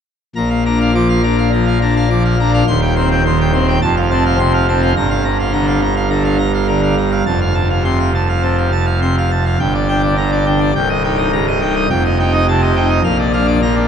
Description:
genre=classical, organ toccata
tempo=104 BPM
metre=4/4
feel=straight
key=Bb major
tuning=A4 = 440 Hz
part: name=pipe organ, full organ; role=solo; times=0.4-13.9 s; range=C1 to D6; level=-12 LUFS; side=equal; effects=none
room=wet cathedral reverb, RT60 5.4 s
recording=in a vast, echoing space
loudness=-12 LUFS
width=side -8 dB against mid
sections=0.4-13.9 A section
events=none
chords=0.4 Bb; 2.7 Cm/Eb; 3.8 F; 5.0 Gm7; 7.3 F; 9.6 Gm; 10.8 Cm7; 11.9 F9; 13.0 Bb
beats=| 0.36 0.94 1.52 2.09 | 2.67 3.24 3.82 4.39 | 4.96 5.53 6.10 6.68 | 7.26 7.85 8.43 9.02 | 9.61 10.18 10.76 11.33 | 11.91 12.48 13.05 13.62

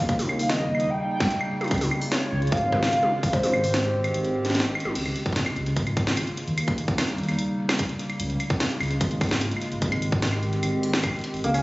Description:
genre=IDM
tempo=148 BPM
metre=4/4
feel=straight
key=Db lydian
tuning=A4 = 440 Hz
part: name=warbly nostalgic lead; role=melody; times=0.0-4.5, 11.4-11.6 s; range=C5 to G5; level=-26 LUFS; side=equal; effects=chorus, digital delay
part: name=warbly tape-like pad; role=sustained chords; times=0.0-11.6 s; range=Db3 to G4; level=-30 LUFS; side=equal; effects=chorus, built-in reverb
part: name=dark detuned saw bass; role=bass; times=0.0-11.6 s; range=Ab1 to Eb2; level=-27 LUFS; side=equal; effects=none
part: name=electronic kick drum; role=drums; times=0.1-11.1 s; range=none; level=-26 LUFS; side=equal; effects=none
part: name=glitchy drum kit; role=drums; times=0.1-11.6 s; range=claves, crash cymbal, hi-hat, snare drum, toms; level=-27 LUFS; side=equal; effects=ping-pong delay
part: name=felt-muted upright piano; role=arpeggios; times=11.4-11.6 s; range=Bb3 to Db4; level=-26 LUFS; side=equal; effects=none
room=moderate echo chamber reverb, RT60 1.8 s, digital ambience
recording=recorded on a phone in the room, studio reverb, compression, nothing above 7.8 kHz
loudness=-22 LUFS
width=side -20 dB against mid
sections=0.0-5.0 A section; 5.0-11.6 B section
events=break 4.1-5.0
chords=0.1 Eb7; 1.7 Db6; 3.3 Abmaj7; 5.0 Db6; 6.6 Eb7; 8.2 Db6; 9.8 Abmaj7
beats=| 0.09 0.49 0.90 1.31 | 1.71 2.12 2.52 2.93 | 3.33 3.74 4.14 4.55 | 4.96 5.36 5.76 6.17 | 6.58 6.98 7.39 7.79 | 8.20 8.60 9.01 9.41 | 9.82 10.22 10.63 11.04 | 11.44

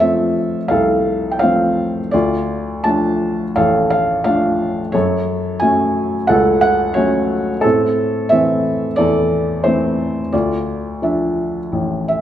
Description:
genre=classical, lyrical solo piano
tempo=88 BPM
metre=4/4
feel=uneven beats, rubato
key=D minor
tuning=A4 = 437 Hz
part: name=felt-muted upright piano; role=solo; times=0.0-12.2 s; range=A1 to A5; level=-14 LUFS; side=equal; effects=none
room=moderate recital hall reverb, RT60 1.6 s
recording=none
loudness=-14 LUFS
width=side -11 dB against mid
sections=0.0-12.2 A section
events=felt piano fill 11.7-12.2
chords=0.0 F; 2.1 Dm; 4.9 F#m; 7.6 Am; 10.3 Dmadd9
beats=0.01 0.70 1.42 | 2.13 2.85 3.56 4.25 | 4.94 5.62 6.29 6.96 | 7.64 8.31 8.98 9.65 | 10.33 11.02 11.73

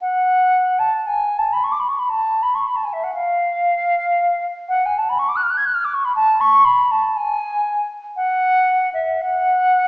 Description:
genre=classical, free, expressive piece for unaccompanied flute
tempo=59 BPM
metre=3/4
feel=uneven beats, rubato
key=F# minor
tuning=A4 = 440 Hz
part: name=silver concert flute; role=solo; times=0.0-9.9 s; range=E5 to G#6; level=-16 LUFS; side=equal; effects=none
room=wet recital hall reverb, RT60 1.5 s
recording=heard from further back in the room, small speaker sound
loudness=-16 LUFS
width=side -27 dB against mid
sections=0.0-9.9 A section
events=none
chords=none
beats=| 0.01 1.07 2.10 | 3.13 4.18 5.17 | 6.15 7.14 8.14 | 9.20

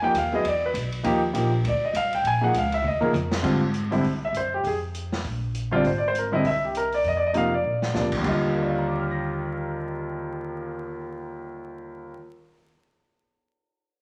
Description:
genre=jazz piano trio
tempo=200 BPM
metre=4/4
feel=swing 60% on 8ths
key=Eb major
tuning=A4 = 440 Hz
part: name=warm grand piano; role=melody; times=0.0-12.4 s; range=Eb2 to Bb6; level=-26 LUFS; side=equal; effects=none
part: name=upright bass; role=bass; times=0.0-12.1 s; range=Ab1 to Ab2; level=-33 LUFS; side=equal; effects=none
part: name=vintage drum kit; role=drums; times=0.1-10.6 s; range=crash cymbal, cymbal swell, hi-hat, kick drum, ride cymbal, snare drum, toms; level=-36 LUFS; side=equal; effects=none
room=moderate large studio reverb, RT60 1.2 s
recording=vinyl crackle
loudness=-25 LUFS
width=mono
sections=0.0-3.4 A section; 3.4-8.2 B section; 8.2-10.6 C section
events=drum fill 2.8-3.4, 7.6-7.9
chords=0.4 E5; 1.0 Ebmaj9; 2.2 Bbm7; 2.8 Ebsus2; 3.4 Abmaj7; 4.0 N.C.; 5.2 Bb; 5.8 Ab; 6.4 C7; 7.0 F5; 7.6 Bb; 8.2 Ebmaj9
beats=0.14 0.44 0.74 | 1.04 1.34 1.64 1.94 | 2.24 2.54 2.84 3.14 | 3.44 3.74 4.04 4.34 | 4.64 4.94 5.24 5.54 | 5.84 6.14 6.44 6.74 | 7.04 7.34 7.64 7.94 | 8.24 8.54 8.84 9.14 | 9.44 9.74 10.04 10.34

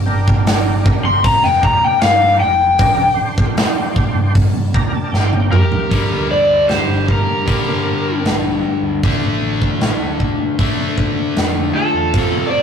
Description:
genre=blues rock power trio and southern rock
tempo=77 BPM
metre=4/4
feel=straight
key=G minor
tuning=A4 = 440 Hz
part: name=overdriven picked electric bass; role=bass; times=0.0-12.6 s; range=F1 to G2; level=-20 LUFS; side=right 1 dB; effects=none
part: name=overdriven tonewheel organ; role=sustained chords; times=0.1-5.9 s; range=D4 to Bb5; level=-25 LUFS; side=right 2 dB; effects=slow rotary speaker, chorus vibrato
part: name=big rock drum kit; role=drums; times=0.3-12.3 s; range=hi-hat, kick drum, snare drum, toms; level=-17 LUFS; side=right 1 dB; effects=none
part: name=overdriven slide guitar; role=melody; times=1.1-12.6 s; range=A4 to C6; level=-15 LUFS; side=left 2 dB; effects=slapback echo
part: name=dark smooth lead guitar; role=second line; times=5.5-12.6 s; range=F4 to C5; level=-24 LUFS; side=right 3 dB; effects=overdrive
part: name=cranked stack guitar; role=riff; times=5.9-12.6 s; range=F2 to D4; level=-19 LUFS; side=left 3 dB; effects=overdrive
room=wet booth ambience, RT60 0.2 s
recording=rough rehearsal-room recording, warm saturation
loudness=-13 LUFS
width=side -7 dB against mid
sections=0.0-5.9 A section; 5.9-12.6 B section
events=electric slide guitar solo 0.0-5.9; tonewheel organ fill 4.4-5.9; drum fill 5.1-5.9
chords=0.0 Gm; 9.0 D5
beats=0.48 1.25 2.03 | 2.81 3.58 4.36 5.13 | 5.91 6.69 7.47 8.25 | 9.02 9.80 10.58 11.35 | 12.13

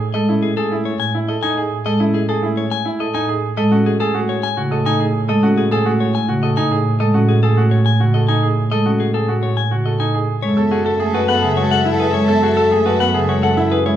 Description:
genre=classical, minimalist pattern music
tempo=105 BPM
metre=3/4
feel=straight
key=F# minor from 10.4 s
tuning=A4 = 440 Hz
part: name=bright grand piano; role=arpeggios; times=0.0-14.0 s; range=D#4 to B4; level=-20 LUFS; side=right 3 dB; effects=none
part: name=rich studio double bass section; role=bass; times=0.0-14.0 s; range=F#2 to A2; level=-20 LUFS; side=right 2 dB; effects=none
part: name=clean electric guitar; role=melody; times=0.1-14.0 s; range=G#4 to G#5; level=-22 LUFS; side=left 8 dB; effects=none
part: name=marimba with soft mallets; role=accompaniment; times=0.1-14.0 s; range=C#3 to C#4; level=-20 LUFS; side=equal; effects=none
part: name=clear soprano saxophone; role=second line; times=10.4-13.6 s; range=A4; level=-24 LUFS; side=equal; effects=none
part: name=rich studio violin section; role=sustained chords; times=10.4-13.7 s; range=A4 to E5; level=-26 LUFS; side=left 5 dB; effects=none
room=wet recital hall reverb, RT60 1.3 s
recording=dark, warm production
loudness=-14 LUFS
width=side -11 dB against mid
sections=0.0-10.4 A section; 10.4-14.0 B section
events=none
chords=0.0 Amaj7(no3); 3.6 F#madd9/A; 10.4 F#m11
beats=| 0.14 0.71 1.29 | 1.86 2.43 3.00 | 3.57 4.14 4.71 | 5.29 5.86 6.43 | 7.00 7.57 8.14 | 8.71 9.29 9.86 | 10.43 11.00 11.57 | 12.14 12.71 13.29 | 13.86

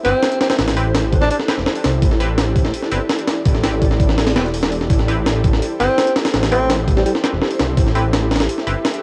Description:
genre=drum and bass, jungle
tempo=167 BPM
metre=4/4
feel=straight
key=A minor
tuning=A4 = 440 Hz
part: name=breathy tenor saxophone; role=melody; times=0.0-1.4, 5.8-7.1 s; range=G3 to D4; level=-23 LUFS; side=equal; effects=cassette tape, dub echo
part: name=ethereal airy pad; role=sustained chords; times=0.0-9.0 s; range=E4 to E5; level=-26 LUFS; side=equal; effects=ensemble chorus, built-in reverb, tremolo, cassette tape
part: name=band-passed chord stab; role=stabs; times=0.0-8.7 s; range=C4 to B4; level=-30 LUFS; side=equal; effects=chorus, vintage 12-bit sampler grit, cassette tape, dub echo
part: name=detuned saw bass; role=bass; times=0.0-8.8 s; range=E1 to C2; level=-22 LUFS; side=equal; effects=none
part: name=breakbeat sampler-style drum kit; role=drums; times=0.0-9.0 s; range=hi-hat, kick drum, snare drum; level=-20 LUFS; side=equal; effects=cassette tape
room=light reverb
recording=home recording on cassette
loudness=-17 LUFS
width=mono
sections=0.0-9.0 A section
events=none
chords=0.0 Am7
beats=0.23 | 0.59 0.95 1.30 1.66 | 2.02 2.38 2.74 3.10 | 3.46 3.82 4.18 4.54 | 4.90 5.26 5.62 5.98 | 6.33 6.69 7.05 7.41 | 7.77 8.13 8.49 8.85

